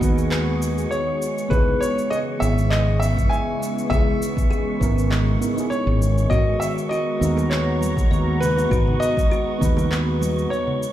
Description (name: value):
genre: sunset chillout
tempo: 100 BPM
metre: 4/4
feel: straight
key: G# minor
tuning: A4 = 440 Hz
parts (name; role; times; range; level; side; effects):
- warm concert grand piano; melody; 0.0-10.9 s; B4 to G#5; -26 LUFS; equal; digital delay
- mellow FM electric piano; accompaniment; 0.0-10.8 s; D#3 to A#5; -28 LUFS; moving between left 7 dB and right 5 dB; chorus, auto-pan, digital delay
- lush unison pad; sustained chords; 0.0-10.9 s; C#3 to A#5; -28 LUFS; right 1 dB; chorus
- mellow fretless electric bass; bass; 0.0-10.5 s; G#1 to D#2; -21 LUFS; equal; none
- electronic cabasa and handclaps; drums; 0.0-10.9 s; none; -33 LUFS; equal; none
- electronic kick drum; drums; 0.0-9.7 s; none; -22 LUFS; equal; none
- wind-like tuned noise texture; texture; 0.0-10.9 s; C#6; -36 LUFS; right 4 dB; built-in reverb
- kalimba; arpeggios; 0.3-10.7 s; F#4 to E5; -32 LUFS; left 3 dB; digital delay
- congas and bongos; percussion; 7.4-10.8 s; none; -30 LUFS; right 2 dB; none
room: light reverb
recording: played on a big sound system in a bare room, large studio reverb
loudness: -18 LUFS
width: side -12 dB against mid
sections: 0.0-10.9 A section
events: none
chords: 0.0 G#m9; 1.2 C#m9; 6.3 G#m9